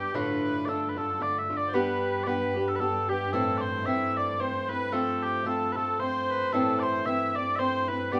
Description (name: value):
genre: celtic folk, Celtic waltz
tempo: 113 BPM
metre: 3/4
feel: swing 56% on 8ths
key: unclear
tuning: A4 = 440 Hz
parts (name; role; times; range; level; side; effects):
- mellow small bagpipes; melody; 0.0-8.2 s; G4 to E5; -32 LUFS; equal; none
- accordion; second line; 0.0-8.2 s; G4 to E5; -36 LUFS; equal; none
- fingerpicked swing-style acoustic guitar; accompaniment; 0.0-8.2 s; D2 to G4; -32 LUFS; equal; none
- warm cello; drone; 0.0-8.2 s; G2; -41 LUFS; equal; none
room: moderate studio reverb, RT60 0.5 s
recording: none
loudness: -28 LUFS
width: mono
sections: 0.1-8.2 A section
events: none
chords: 0.1 Dm; 1.7 G; 3.3 Am; 4.9 F; 6.5 Am